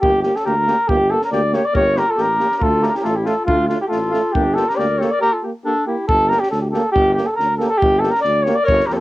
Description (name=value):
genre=balkan folk, Balkan brass band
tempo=138 BPM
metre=2/4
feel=swing 55% on 16ths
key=G dorian sharp4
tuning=A4 = 439 Hz
part: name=mellow flugelhorn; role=melody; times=0.0-9.0 s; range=F4 to D5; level=-17 LUFS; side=equal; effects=cassette tape
part: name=brilliant trombone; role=accompaniment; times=0.0-9.0 s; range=F4 to G4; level=-26 LUFS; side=left 4 dB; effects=cassette tape
part: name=warm euphonium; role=accompaniment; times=0.0-9.0 s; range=A3 to Bb3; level=-25 LUFS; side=right 3 dB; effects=cassette tape
part: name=warm tuba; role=bass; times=0.0-9.0 s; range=G1 to F2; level=-22 LUFS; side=equal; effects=none
part: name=compact cocktail drum kit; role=percussion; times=0.0-9.0 s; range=kick drum, snare drum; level=-25 LUFS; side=equal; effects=cassette tape
part: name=clear clarinet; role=second line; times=1.7-6.1, 8.6-9.0 s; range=D4 to Bb4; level=-26 LUFS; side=left 3 dB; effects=cassette tape
room=light reverb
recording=home recording on cassette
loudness=-15 LUFS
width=side -17 dB against mid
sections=0.0-6.1 A section; 6.1-9.0 A section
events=break 5.2-6.1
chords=0.0 Gm; 2.6 Dm; 4.3 Gm